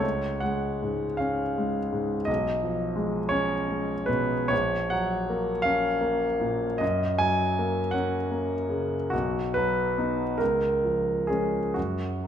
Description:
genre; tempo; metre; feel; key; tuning
classical, romantic nocturne for solo piano; 42-58 BPM (dotted quarters); 12/8; rubato; F# major; A4 = 440 Hz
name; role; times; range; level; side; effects
warm concert grand piano; solo; 0.0-12.3 s; A#1 to G#5; -24 LUFS; equal; none
room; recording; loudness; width
wet recital hall reverb, RT60 1.4 s; nothing above 10.3 kHz; -24 LUFS; side -9 dB against mid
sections
0.0-12.3 A section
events
none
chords
0.0 C#; 2.3 C#7/B; 4.5 F#/A#; 6.8 F#; 9.1 B; 10.4 C#; 11.8 N.C.

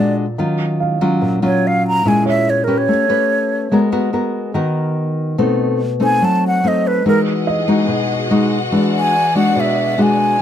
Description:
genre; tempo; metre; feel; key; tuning
bossa nova; 144 BPM; 4/4; straight; unclear; A4 = 440 Hz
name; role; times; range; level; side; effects
breathy concert flute; melody; 0.0-10.4 s; Bb4 to Bb5; -17 LUFS; right 1 dB; none
nylon-string guitar; accompaniment; 0.0-10.4 s; A#2 to Cb5; -16 LUFS; left 1 dB; none
warm baby grand piano; accompaniment; 0.8-2.9, 7.5-8.7 s; Db5 to F5; -24 LUFS; right 2 dB; none
warm studio string section; sustained chords; 7.1-10.4 s; Eb4 to F6; -23 LUFS; left 1 dB; none
room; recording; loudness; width
light reverb; close, detailed microphones; -14 LUFS; side -10 dB against mid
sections
0.4-10.4 A section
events
flute solo 0.4-10.4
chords
0.4 Ebm9; 2.1 Bbm7b5; 2.9 A9; 3.7 Abm9; 5.4 B7b9; 7.1 Emaj9; 8.7 E9

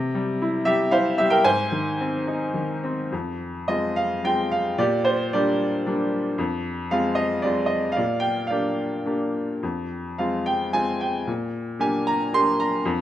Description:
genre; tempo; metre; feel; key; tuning
classical, lyrical solo piano; 104-118 BPM; 3/4; rubato; F dorian from 3.1 s; A4 = 439 Hz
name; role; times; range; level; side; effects
bright upright piano; solo; 0.0-13.0 s; F2 to C6; -21 LUFS; equal; none
room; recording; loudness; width
moderate recital hall reverb, RT60 1.4 s; none; -21 LUFS; side -12 dB against mid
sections
0.0-3.1 A section; 3.1-13.0 B section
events
none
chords
0.0 C; 1.5 Ab; 3.1 Fm; 4.8 Bb6; 6.4 Fm; 8.0 Bb6; 9.6 Fm; 11.3 Bb6

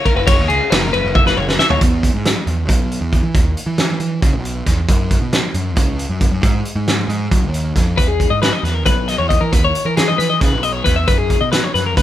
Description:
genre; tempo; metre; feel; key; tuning
math rock and midwest emo; 272 BPM (eighths); 7/8; straight; E lydian; A4 = 440 Hz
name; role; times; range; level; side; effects
twelve-string electric guitar; arpeggios; 0.0-1.8, 8.0-12.0 s; G#4 to E5; -17 LUFS; left 5 dB; none
loose indie drum kit; drums; 0.1-12.0 s; hi-hat, kick drum, ride cymbal, snare drum, toms; -16 LUFS; right 1 dB; none
fuzz picked electric bass; bass; 0.2-12.0 s; F#1 to F#3; -19 LUFS; right 1 dB; overdrive
room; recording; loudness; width
light reverb; band playing live in one room; -14 LUFS; side -12 dB against mid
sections
0.0-1.8 A section; 1.8-12.0 B section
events
drum fill 1.2-1.8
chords
0.0 F#sus2; 1.8 E5; 4.9 F#sus4; 6.4 G#5; 8.0 Emaj7; 11.1 F#sus4

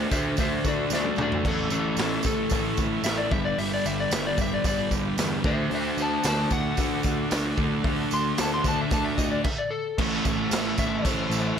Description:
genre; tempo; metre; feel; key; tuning
garage rock duo or trio; 112 BPM; 4/4; straight; A mixolydian; A4 = 440 Hz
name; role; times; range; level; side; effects
electric slide guitar; melody; 0.0-11.6 s; C#4 to C6; -29 LUFS; left 3 dB; analog delay
overdriven combo organ; sustained chords; 0.0-11.6 s; C#4 to B4; -37 LUFS; right 1 dB; none
fuzz guitar; riff; 0.0-11.6 s; G2 to D4; -27 LUFS; right 1 dB; distortion
fuzz picked electric bass; bass; 0.0-11.6 s; G1 to E2; -32 LUFS; equal; overdrive
raw garage drum kit; drums; 0.1-11.4 s; crash cymbal, hi-hat, kick drum, snare drum, toms; -28 LUFS; equal; none
tambourine; percussion; 0.1-11.4 s; none; -37 LUFS; right 11 dB; none
room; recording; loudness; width
little or no reverb; none; -23 LUFS; side -8 dB against mid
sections
0.0-10.0 A section; 10.0-11.6 B section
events
electric slide guitar solo 0.0-10.0; drum fill 0.9-1.4; stop 9.4-10.0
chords
0.0 D; 1.4 A; 3.3 G; 5.4 D; 10.0 A

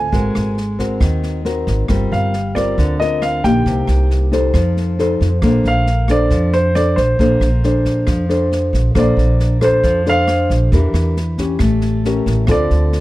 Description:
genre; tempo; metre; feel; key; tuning
bossa nova; 136 BPM; 4/4; straight; Bb major; A4 = 440 Hz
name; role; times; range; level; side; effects
warm grand piano; melody; 0.0-13.0 s; C5 to Ab5; -20 LUFS; right 1 dB; none
nylon-string guitar; accompaniment; 0.0-13.0 s; A2 to C5; -18 LUFS; left 1 dB; none
upright bass; bass; 0.0-13.0 s; G1 to F2; -17 LUFS; equal; none
swinging big-band drum kit; drums; 0.1-13.0 s; kick drum, rim click, snare drum; -23 LUFS; equal; none
room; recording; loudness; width
studio reverb; dry, close 1970s-style studio recording; -13 LUFS; side -17 dB against mid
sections
0.0-9.0 A section; 9.0-13.0 B section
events
grand piano solo 9.0-13.0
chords
0.1 Ab9; 1.9 Gm7; 3.7 Cm7; 4.5 F7; 5.4 Bbmaj9; 10.7 Em7b5; 11.6 A7b9; 12.5 Dm7

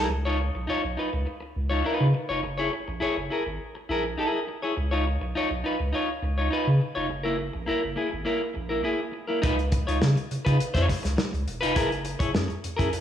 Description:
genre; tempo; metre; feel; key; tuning
funk; 103 BPM; 4/4; straight; Db mixolydian; A4 = 440 Hz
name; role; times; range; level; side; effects
clean electric guitar; accompaniment; 0.0-12.9 s; Bb3 to Db5; -27 LUFS; left 1 dB; spring reverb
round analog bass; bass; 0.0-12.9 s; Fb1 to Db3; -27 LUFS; equal; none
warm soul drum kit; drums; 9.4-13.0 s; hi-hat, kick drum, snare drum; -28 LUFS; equal; none
room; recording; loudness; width
light reverb; small room reverb; -24 LUFS; side -10 dB against mid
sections
0.1-9.4 A section; 9.4-13.0 B section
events
none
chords
0.1 Db9; 2.4 Gb9; 4.8 Db9; 7.1 Gb9; 9.4 Db9; 11.8 Gb9

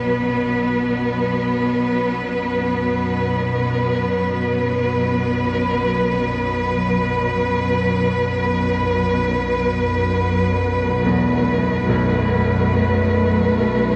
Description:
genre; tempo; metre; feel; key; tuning
dark ambient drone; free time; none; none; unclear; A4 = 436 Hz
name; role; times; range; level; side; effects
warm studio cello section; sustained chords; 0.0-14.0 s; B2 to B4; -21 LUFS; equal; none
organ-like drone; drone; 0.0-14.0 s; B1 to F#2; -26 LUFS; equal; ensemble chorus, built-in reverb
clear grand piano; arpeggios; 11.1-14.0 s; B1 to E2; -25 LUFS; equal; delay
room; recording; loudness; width
wet huge ambient reverb, RT60 7.6 s; cassette tape; -19 LUFS; mono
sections
0.0-14.0 A section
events
fade-in on synth drone 0.0-14.0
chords
0.0 B5

